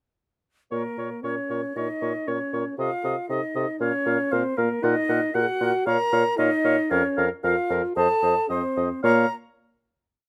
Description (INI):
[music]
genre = quick classical-period movement for wind quintet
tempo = 115 BPM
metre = 4/4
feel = rubato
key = Bb minor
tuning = A4 = 443 Hz
[part]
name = bright concert flute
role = melody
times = 0.7-9.3 s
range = Bb4 to Bb5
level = -30 LUFS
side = equal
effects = none
[part]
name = warm oboe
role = second line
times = 0.7-9.3 s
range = Db5 to Gb5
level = -31 LUFS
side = equal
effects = none
[part]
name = mellow French horn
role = accompaniment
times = 0.7-9.3 s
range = Bb3 to Bb4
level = -30 LUFS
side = equal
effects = none
[part]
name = mellow clarinet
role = accompaniment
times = 0.7-9.3 s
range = A4 to Db5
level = -32 LUFS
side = equal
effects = none
[part]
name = mellow bassoon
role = bass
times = 0.7-9.3 s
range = F2 to C3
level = -29 LUFS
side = equal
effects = none
[sound]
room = light reverb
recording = close, detailed microphones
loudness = -24 LUFS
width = mono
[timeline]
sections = 0.7-9.0 A section; 9.0-10.3 final chord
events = none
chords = 0.7 Bbm; 2.8 Adim/C; 3.8 Bbm; 4.8 Ebm/Bb; 5.9 Bbm; 6.9 Bb5/F; 8.0 F7; 9.0 Bbm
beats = | 0.72 1.24 1.76 2.28 | 2.79 3.29 3.80 4.32 | 4.83 5.35 5.87 6.38 | 6.91 7.44 7.96 8.49 | 9.04